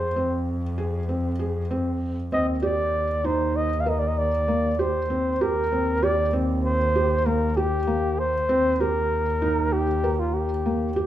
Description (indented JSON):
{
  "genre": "contemporary instrumental, contemporary",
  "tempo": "97 BPM",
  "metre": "5/4",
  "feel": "straight",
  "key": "Eb major",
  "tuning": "A4 = 438 Hz",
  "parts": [
    { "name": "breathy flugelhorn", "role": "melody", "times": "0.0-11.1 s", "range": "F4 to F5", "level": "-24 LUFS", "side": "equal", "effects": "none" },
    { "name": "felt-muted upright piano", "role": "arpeggios", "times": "0.0-11.1 s", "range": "Bb3 to Bb4", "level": "-27 LUFS", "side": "right 1 dB", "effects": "none" },
    { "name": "dark double bass", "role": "bass", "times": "0.0-11.1 s", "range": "Eb2 to F2", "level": "-27 LUFS", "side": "equal", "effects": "none" }
  ],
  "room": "moderate recital hall reverb, RT60 1.3 s",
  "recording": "minimal, uncompressed stereo recording",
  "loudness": "-21 LUFS",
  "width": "side -12 dB against mid",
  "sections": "0.0-11.1 A section",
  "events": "none",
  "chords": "0.0 Fm; 2.3 Eb6"
}